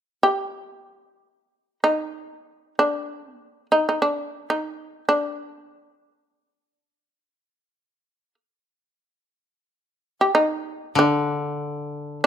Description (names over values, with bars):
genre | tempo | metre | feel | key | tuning
japanese traditional, Japanese chamber music | free time | none | none | unclear | A4 = 439 Hz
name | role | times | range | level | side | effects
shamisen | melody | 0.2-12.3 s | D4 to G4 | -20 LUFS | equal | none
koto | accompaniment | 11.0-12.3 s | D3 | -22 LUFS | left 2 dB | none
room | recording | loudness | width
light reverb | close, detailed microphones | -21 LUFS | side -9 dB against mid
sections
0.0-12.3 A section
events
none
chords
none